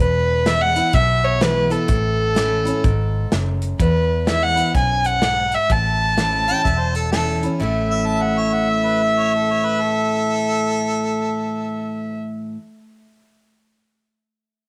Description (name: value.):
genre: honky-tonk and classic country.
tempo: 126 BPM.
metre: 4/4.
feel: swing 63% on 8ths.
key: A major.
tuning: A4 = 438 Hz.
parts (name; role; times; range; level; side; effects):
dark fiddle; melody; 0.0-12.2 s; A4 to A5; -22 LUFS; equal; cassette tape.
picked steel-string acoustic guitar; accompaniment; 0.0-12.6 s; E2 to E4; -26 LUFS; equal; cassette tape.
vintage muted fingered electric bass; bass; 0.0-12.5 s; E1 to E2; -25 LUFS; equal; none.
natural country drum kit; drums; 0.5-7.5 s; hi-hat, kick drum, snare drum; -24 LUFS; equal; cassette tape.
warm harmonica; second line; 6.5-12.2 s; A4 to A5; -27 LUFS; equal; cassette tape.
room: light reverb.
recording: home recording on cassette.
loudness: -19 LUFS.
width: mono.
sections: 0.0-3.8 A section; 3.8-7.6 B section; 7.6-11.4 C section.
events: none.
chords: 0.0 E; 1.9 A; 3.8 E; 5.7 A.